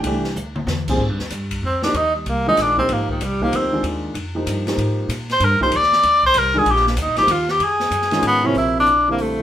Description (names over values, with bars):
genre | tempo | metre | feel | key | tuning
modal jazz | 191 BPM | 3/4 | swing 63% on 8ths | Ab lydian | A4 = 442 Hz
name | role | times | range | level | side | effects
warm baby grand piano | accompaniment | 0.0-9.4 s | Bb2 to G5 | -23 LUFS | equal | none
upright bass | bass | 0.0-9.4 s | G1 to Bb2 | -25 LUFS | equal | none
open jazz drum kit | drums | 0.0-9.3 s | crash cymbal, hi-hat, kick drum, ride cymbal, snare drum, toms | -28 LUFS | left 2 dB | none
clear tenor saxophone | melody | 1.7-9.4 s | Eb3 to D5 | -16 LUFS | equal | none
room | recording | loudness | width
wet studio reverb, RT60 0.5 s | band playing live in one room | -16 LUFS | side -11 dB against mid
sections
1.0-8.6 A section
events
drum fill 0.4-0.7; tenor saxophone solo 1.0-8.6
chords
0.0 Csus2; 1.0 Abmaj9; 4.8 Ebadd9; 7.6 Fm7; 8.6 Bbmaj9#11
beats
| 0.05 0.37 0.68 | 1.00 1.31 1.63 | 1.95 2.26 2.58 | 2.89 3.21 3.52 | 3.84 4.15 4.46 | 4.78 5.09 5.41 | 5.72 6.04 6.35 | 6.67 6.98 7.29 | 7.61 7.92 8.24 | 8.55 8.87 9.18